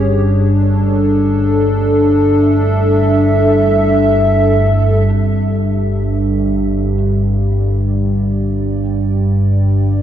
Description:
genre	dark ambient drone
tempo	free time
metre	none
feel	none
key	unclear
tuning	A4 = 440 Hz
part	dark analog pad	sustained chords	0.0-10.0 s	D4 to G5	-15 LUFS	equal	chorus
part	analog drone	drone	0.0-10.0 s	G1 to G2	-14 LUFS	equal	wide subtle chorus
part	dark detuned synth bell	arpeggios	5.1-10.0 s	C4	-40 LUFS	left 3 dB	none
room	moderate huge ambient reverb, RT60 7.5 s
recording	none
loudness	-11 LUFS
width	side -10 dB against mid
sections	0.0-5.1 A section; 5.1-10.0 B section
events	none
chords	0.0 D5; 5.1 G5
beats	free time

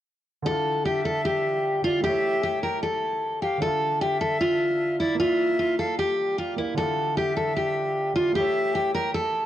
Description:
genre	hip hop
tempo	152 BPM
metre	4/4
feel	half-time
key	D harmonic minor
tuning	A4 = 440 Hz
part	dark grand piano	accompaniment	0.4-9.5 s	D3 to F5	-33 LUFS	right 2 dB	low-pass filter
part	picked steel-string acoustic guitar	melody	0.5-9.5 s	E4 to Bb4	-23 LUFS	equal	low-pass filter
part	breathy silver concert flute	second line	0.9-9.1 s	D5 to G5	-31 LUFS	equal	analog delay
room	light reverb, small room ambience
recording	dry, gritty hardware recording, transformer saturation, cassette tape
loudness	-22 LUFS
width	side -12 dB against mid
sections	0.5-9.5 A section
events	none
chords	0.5 Dmadd9; 2.0 A7; 3.6 Dmadd9; 5.2 Bb; 6.8 Dmadd9; 8.4 A7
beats	| 0.46 0.85 1.25 1.64 | 2.04 2.43 2.83 3.22 | 3.62 4.01 4.41 4.80 | 5.20 5.59 5.99 6.38 | 6.78 7.17 7.57 7.96 | 8.35 8.75 9.14

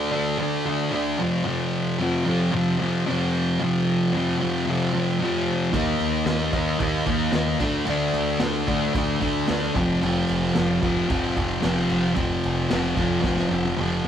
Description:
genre	garage rock duo or trio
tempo	112 BPM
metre	4/4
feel	straight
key	F mixolydian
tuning	A4 = 440 Hz
part	thick fuzz guitar	riff	0.0-14.1 s	F2 to Eb4	-21 LUFS	equal	distortion
part	growling picked electric bass	bass	5.7-14.1 s	F1 to Eb2	-30 LUFS	equal	overdrive
part	crunchy breakbeat drum kit	drums	5.7-14.1 s	crash cymbal, kick drum, snare drum, toms	-29 LUFS	equal	none
room	light reverb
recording	band playing live in one room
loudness	-21 LUFS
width	side -9 dB against mid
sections	0.0-14.1 A section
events	drum fill 13.2-14.1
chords	0.0 D5; 1.2 F5; 5.7 Eb5; 7.6 D5; 9.8 F5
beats	0.40 0.94 | 1.47 2.01 2.54 3.07 | 3.61 4.14 4.68 5.21 | 5.74 6.28 6.81 7.35 | 7.88 8.42 8.95 9.49 | 10.02 10.56 11.09 11.63 | 12.16 12.70 13.24 13.78

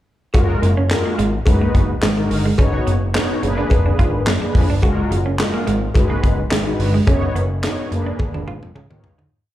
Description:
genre	early-eighties boogie funk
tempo	107 BPM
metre	4/4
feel	straight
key	F# major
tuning	A4 = 439 Hz
part	mellow synth brass	accompaniment	0.3-9.2 s	G#3 to C#5	-22 LUFS	left 1 dB	chorus, slapback echo
part	clean electric guitar	riff	0.3-9.3 s	G#3 to F#4	-25 LUFS	right 3 dB	wide subtle chorus, slapback echo
part	fat analog bass	bass	0.3-9.3 s	E#1 to F#2	-19 LUFS	equal	none
part	tight funk drum kit	drums	0.3-9.3 s	handclaps, hi-hat, kick drum, snare drum, toms	-19 LUFS	equal	none
part	cowbell	percussion	0.3-8.9 s	none	-30 LUFS	left 2 dB	none
room	little or no reverb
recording	live gig heard through the venue's PA, club reverb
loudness	-15 LUFS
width	side -14 dB against mid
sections	0.3-9.3 verse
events	fade-out 7.1-9.3; drum fill 8.2-9.3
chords	0.3 F#maj9; 1.5 B6/F#; 2.6 C#9sus4/F#; 3.4 A#7b9; 4.8 F#maj9; 6.0 B6/F#; 7.1 C#9sus4/F#; 7.9 A#7b9/F#; 8.8 C#9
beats	| 0.34 0.91 1.47 2.03 | 2.59 3.15 3.71 4.27 | 4.83 5.39 5.95 6.51 | 7.07 7.63 8.20 8.76

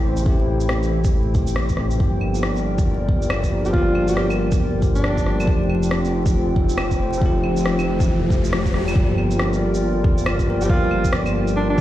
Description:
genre	future garage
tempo	138 BPM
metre	4/4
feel	swing 61% on 16ths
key	G dorian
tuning	A4 = 439 Hz
part	bell-like tine electric piano	accompaniment	0.0-11.8 s	C3 to C5	-24 LUFS	left 1 dB	sidechain pumping, low-pass filter, tape echo
part	warbly tape-like pad	sustained chords	0.0-11.8 s	E4 to G5	-28 LUFS	left 1 dB	chorus, built-in reverb, vintage 12-bit sampler grit, sidechain pumping
part	swelling detuned saw bass	bass	0.0-11.8 s	F1 to A1	-22 LUFS	equal	sidechain pumping
part	electronic shaker, rim click and claves	drums	0.2-11.8 s	none	-28 LUFS	equal	none
part	electronic kick drum	drums	0.3-11.8 s	none	-20 LUFS	equal	none
part	breathy alto saxophone	melody	3.7-5.5, 10.6-11.8 s	D4 to G4	-25 LUFS	right 1 dB	tape echo
part	riser	sound effects	6.6-9.0 s	none	-30 LUFS	equal	none
room	light reverb, digital ambience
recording	played on a big sound system in a bare room, stone room reverb, vinyl crackle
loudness	-17 LUFS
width	side -13 dB against mid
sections	0.0-9.0 A section; 9.0-11.8 B section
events	riser 6.6-9.0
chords	0.0 Am7; 2.0 Gm7; 5.5 Fadd9; 9.0 Gm7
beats	| 0.26 0.70 1.13 1.57 | 2.00 2.44 2.87 3.31 | 3.74 4.17 4.61 5.04 | 5.48 5.91 6.35 6.78 | 7.22 7.65 8.09 8.52 | 8.96 9.39 9.83 10.26 | 10.70 11.13 11.57

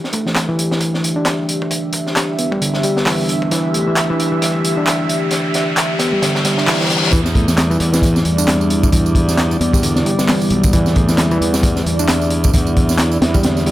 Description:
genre	breakbeat, breaks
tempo	133 BPM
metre	4/4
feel	swing 57% on 16ths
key	E minor pentatonic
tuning	A4 = 440 Hz
part	dark analog pad	sustained chords	0.0-13.7 s	G3 to E5	-22 LUFS	right 1 dB	chorus, sidechain pumping
part	crunchy breakbeat drum kit	drums	0.0-13.7 s	hi-hat, kick drum, snare drum	-18 LUFS	equal	high-pass filter on kick, high-pass filter on hats, high-pass filter on snare, high-pass filter on room
part	riser and reverse cymbal	sound effects	2.5-7.1 s	none	-25 LUFS	left 2 dB	none
part	overdriven reed electric piano	riff	0.1-13.7 s	D3 to D4	-18 LUFS	equal	tube saturation, low-pass filter, digital delay
part	electronic handclaps and tambourine	drums	0.4-13.6 s	none	-21 LUFS	right 1 dB	none
part	fuzz fingered electric bass	bass	7.1-13.7 s	B1 to E2	-18 LUFS	equal	overdrive, tube saturation
room	moderate small room ambience, RT60 0.5 s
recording	none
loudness	-13 LUFS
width	side -14 dB against mid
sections	0.0-7.1 A section; 7.1-13.7 B section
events	build-up 0.0-7.1; riser 2.5-7.1; drum fill 3.5-7.1; reverse cymbal 6.2-7.1; drop 7.1-13.7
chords	0.0 Em7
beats	0.36 0.81 1.26 | 1.71 2.16 2.61 3.06 | 3.52 3.97 4.42 4.87 | 5.32 5.77 6.22 6.67 | 7.13 7.58 8.03 8.48 | 8.93 9.38 9.83 10.28 | 10.73 11.19 11.64 12.09 | 12.54 12.99 13.44

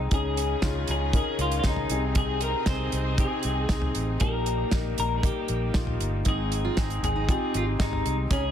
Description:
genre	piano-driven pop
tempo	117 BPM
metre	4/4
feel	straight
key	Ab major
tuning	A4 = 440 Hz
part	warm concert grand piano	accompaniment	0.0-8.5 s	Ab2 to Bb4	-31 LUFS	left 4 dB	none
part	bright studio string section	sustained chords	0.0-8.5 s	C3 to Ab4	-37 LUFS	right 3 dB	none
part	vintage muted fingered electric bass	bass	0.0-8.5 s	G1 to Db2	-29 LUFS	equal	none
part	twelve-string electric guitar	melody	0.1-8.5 s	Eb4 to C5	-31 LUFS	left 1 dB	spring reverb
part	damped 70s drum kit	drums	0.1-8.4 s	hi-hat, kick drum, snare drum, toms	-27 LUFS	equal	none
part	fingerpicked steel-string acoustic guitar	riff	6.3-8.4 s	Db4 to F4	-34 LUFS	right 8 dB	none
room	light reverb, small room reverb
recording	dense, heavily limited modern master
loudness	-24 LUFS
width	side -9 dB against mid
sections	0.0-8.5 A section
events	none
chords	0.1 Dbsus2; 1.9 Ab/C; 4.2 Eb/Bb; 6.3 Ab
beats	| 0.12 0.63 1.14 1.65 | 2.16 2.68 3.19 3.70 | 4.21 4.72 5.24 5.75 | 6.26 6.77 7.28 7.79 | 8.31

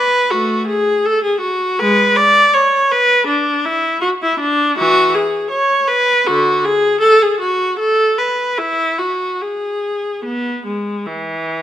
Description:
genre	classical, baroque-style suite movement for unaccompanied viola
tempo	79 BPM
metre	4/4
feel	uneven beats, rubato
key	unclear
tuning	A4 = 438 Hz
part	warm viola	solo	0.0-11.6 s	D3 to D5	-13 LUFS	equal	none
room	moderate stone room reverb, RT60 1.3 s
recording	none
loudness	-13 LUFS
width	side -11 dB against mid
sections	0.0-11.6 A section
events	none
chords	none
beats	| 0.32 1.07 1.81 2.54 | 3.28 4.01 4.76 5.52 | 6.27 7.03 7.79 8.58 | 9.41 10.24 11.07

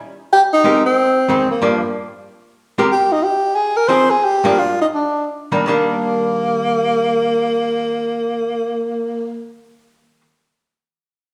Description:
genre	jazz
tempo	158-185 BPM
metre	4/4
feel	swing 62% on 8ths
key	Eb major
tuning	A4 = 440 Hz
part	breathy tenor saxophone	melody	0.3-9.5 s	Bb3 to C5	-18 LUFS	equal	none
part	archtop guitar, miked and amplified	accompaniment	0.6-10.2 s	F2 to Bb4	-22 LUFS	equal	none
room	wet large studio reverb, RT60 1.3 s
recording	band playing live in one room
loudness	-17 LUFS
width	mono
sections	0.3-5.7 A section; 5.7-8.7 B section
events	slowing down 2.9-5.7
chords	0.3 Abmaj9; 1.0 Fm7; 1.6 Gm7; 2.3 Bbsus2; 2.9 N.C.; 3.6 Fm7; 4.2 Gm7; 4.9 Ebmaj7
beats	| 0.31 0.64 0.96 1.28 | 1.61 1.93 2.26 2.58 | 2.90 3.23 3.56 3.89 | 4.23 4.57 4.92 5.29 | 5.66 6.04 6.42 6.80 | 7.18 7.56 7.94 8.32

